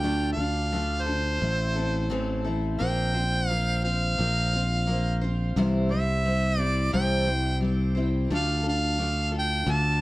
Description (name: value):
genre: folk rock and heartland rock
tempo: 87 BPM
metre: 4/4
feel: straight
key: unclear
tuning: A4 = 439 Hz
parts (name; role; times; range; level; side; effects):
- clear harmonica; melody; 0.0-10.0 s; C5 to A5; -28 LUFS; right 1 dB; tape echo
- picked steel-string acoustic guitar; accompaniment; 0.0-10.0 s; A2 to C5; -29 LUFS; left 1 dB; none
- modern bright fingered electric bass; bass; 0.0-10.0 s; A1 to D2; -26 LUFS; equal; none
room: light reverb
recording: worn, warbling old tape, cassette tape, warbly pitch drift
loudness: -23 LUFS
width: side -18 dB against mid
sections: 0.0-2.8 A section; 2.8-10.0 B section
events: none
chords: 0.0 Dm; 1.4 Am; 2.8 Bbsus2; 5.6 C; 8.3 Dm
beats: | 0.04 0.73 1.42 2.11 | 2.80 3.49 4.18 4.87 | 5.56 6.24 6.93 7.61 | 8.30 8.98 9.67